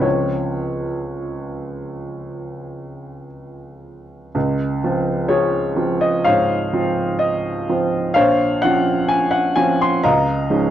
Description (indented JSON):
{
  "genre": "classical, impressionist solo piano",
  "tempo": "53-68 BPM",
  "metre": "4/4",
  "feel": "rubato",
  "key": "Db major",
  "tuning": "A4 = 439 Hz",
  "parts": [
    { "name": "warm baby grand piano", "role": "solo", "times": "0.0-10.7 s", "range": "Bb1 to C6", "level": "-17 LUFS", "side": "equal", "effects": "none" }
  ],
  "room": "light reverb",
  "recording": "worn, warbling old tape, cassette tape, warbly pitch drift",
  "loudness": "-16 LUFS",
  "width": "side -11 dB against mid",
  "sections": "0.0-4.3 A section; 4.3-10.7 A section",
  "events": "none",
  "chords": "0.0 Dbmaj7; 8.2 Bbmadd9; 10.1 Db69",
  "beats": "| 0.04 1.11 2.17 3.26 | 4.35 5.31 6.24 7.20 | 8.15 9.10 10.06"
}